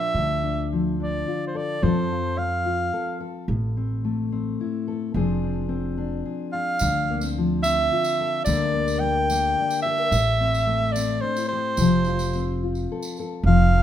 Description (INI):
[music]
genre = acoustic folk duo or small band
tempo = 108 BPM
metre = 3/4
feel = straight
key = unclear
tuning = A4 = 442 Hz
[part]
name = clear soprano saxophone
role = melody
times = 0.0-3.2, 6.5-13.8 s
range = C5 to G5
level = -24 LUFS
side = right 1 dB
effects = none
[part]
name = fingerpicked steel-string acoustic guitar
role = accompaniment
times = 0.0-13.8 s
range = A2 to Bb4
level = -26 LUFS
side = left 4 dB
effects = none
[part]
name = upright bass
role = bass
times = 0.1-13.8 s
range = F1 to F2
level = -25 LUFS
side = right 1 dB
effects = none
[part]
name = tambourine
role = percussion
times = 6.8-13.2 s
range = none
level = -36 LUFS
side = right 4 dB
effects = none
[sound]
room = light reverb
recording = minimal, uncompressed stereo recording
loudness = -21 LUFS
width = side -10 dB against mid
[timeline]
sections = 0.2-13.4 A section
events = none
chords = 0.2 Dm; 1.8 F; 3.5 Am; 5.1 Fm6; 6.8 Dm7; 8.5 Gm/D; 10.1 Am7; 11.8 F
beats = | 0.16 0.71 1.27 | 1.82 2.38 2.93 | 3.48 4.04 4.59 | 5.14 5.70 6.25 | 6.80 7.36 7.91 | 8.47 9.02 9.57 | 10.13 10.68 11.23 | 11.79 12.34 12.90 | 13.45